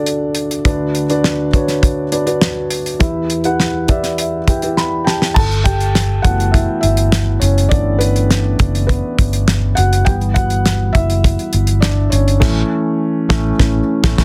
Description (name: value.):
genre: piano-driven pop.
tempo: 102 BPM.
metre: 4/4.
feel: straight.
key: unclear.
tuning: A4 = 440 Hz.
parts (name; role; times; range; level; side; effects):
felt-muted upright piano; accompaniment; 0.0-14.2 s; D2 to B5; -20 LUFS; equal; none.
damped 70s drum kit; drums; 0.1-14.2 s; crash cymbal, hi-hat, kick drum, snare drum; -18 LUFS; equal; soft clipping on kick, soft clipping on snare.
vintage muted fingered electric bass; bass; 5.4-14.2 s; F#1 to A1; -18 LUFS; equal; none.
room: light reverb.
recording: dense, heavily limited modern master.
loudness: -15 LUFS.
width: mono.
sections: 0.0-5.4 A section; 5.4-14.2 B section.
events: felt piano fill 3.6-5.4; drum fill 4.8-5.4; felt piano solo 5.4-14.2; band accent 12.4-14.2.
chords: 0.0 D; 0.6 Bm/D; 3.0 Em; 5.4 G6; 10.1 Em; 12.4 A.